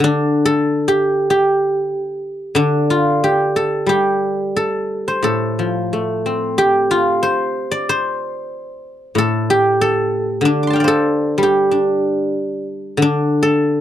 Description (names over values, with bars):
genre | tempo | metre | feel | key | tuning
chinese traditional, Chinese solo plucked strings | 93 BPM | 4/4 | rubato | D yu mode | A4 = 441 Hz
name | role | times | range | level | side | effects
guzheng | solo | 0.0-13.8 s | A2 to D6 | -15 LUFS | equal | none
room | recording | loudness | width
light reverb | dry, close 1970s-style studio recording | -15 LUFS | side -11 dB against mid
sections
0.0-13.8 A section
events
none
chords
none